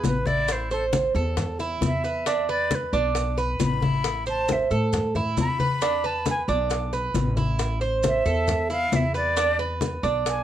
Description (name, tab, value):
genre	latin, Cuban son and guajira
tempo	135 BPM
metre	4/4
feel	straight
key	A minor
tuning	A4 = 440 Hz
part	jazz flute	melody	0.0-10.4 s	A4 to B5	-27 LUFS	left 1 dB	plate reverb
part	Cuban tres	arpeggios	0.0-10.4 s	D4 to C5	-26 LUFS	right 4 dB	none
part	upright bass	bass	0.0-10.4 s	A1 to A2	-28 LUFS	equal	none
part	bongos	percussion	0.0-10.4 s	none	-31 LUFS	left 6 dB	none
part	congas	percussion	0.0-10.4 s	none	-28 LUFS	left 2 dB	none
part	maracas	percussion	0.0-10.4 s	none	-38 LUFS	right 5 dB	none
room	moderate studio reverb, RT60 0.5 s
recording	none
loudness	-22 LUFS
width	side -11 dB against mid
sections	0.0-10.4 A section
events	flute solo 0.0-10.4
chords	0.5 Amadd9; 2.3 E5; 4.0 Amadd9; 5.8 E5; 7.6 Amadd9; 9.4 E7(no3)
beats	0.04 | 0.49 0.93 1.38 1.82 | 2.26 2.71 3.15 3.60 | 4.04 4.49 4.93 5.38 | 5.82 6.26 6.71 7.15 | 7.60 8.04 8.49 8.93 | 9.37 9.82 10.26